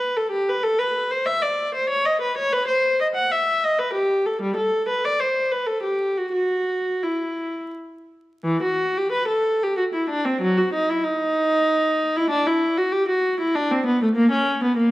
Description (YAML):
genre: classical, baroque-style suite movement for unaccompanied viola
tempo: 79-99 BPM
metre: 3/4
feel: rubato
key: E minor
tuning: A4 = 440 Hz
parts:
  - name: warm viola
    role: solo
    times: 0.0-14.9 s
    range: E3 to F#5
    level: -19 LUFS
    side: equal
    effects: none
room: moderate recital hall reverb, RT60 1.4 s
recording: vinyl crackle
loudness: -19 LUFS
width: side -17 dB against mid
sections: 0.0-8.4 A section; 8.4-14.9 B section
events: none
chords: none